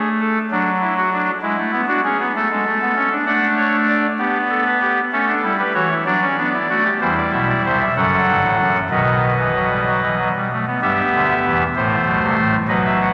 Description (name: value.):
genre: classical, baroque-style 4-part fugue for pipe organ.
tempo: 64 BPM (dotted quarters).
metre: 6/8.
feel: straight.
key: D major, E minor from 7.0 s.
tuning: A4 = 440 Hz.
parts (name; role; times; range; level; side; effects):
pipe organ, soft reed; solo; 0.0-13.1 s; F#1 to F#5; -18 LUFS; equal; none.
room: wet cathedral reverb, RT60 5.1 s.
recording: none.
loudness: -18 LUFS.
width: mono.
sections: 0.0-7.0 A section; 7.0-10.8 B section; 10.8-13.1 C section.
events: none.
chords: 0.0 N.C.; 0.5 D/F#; 1.4 E7/G#; 2.3 A; 3.3 D/A; 4.2 G/B; 5.1 A7; 6.1 D/F#; 7.0 Cmaj9; 8.0 F#m; 8.9 B; 10.8 Em; 11.8 Am.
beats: 0.50 | 1.42 2.34 | 3.26 4.19 | 5.12 6.07 | 7.01 7.96 | 8.91 9.86 | 10.82 11.77 | 12.69.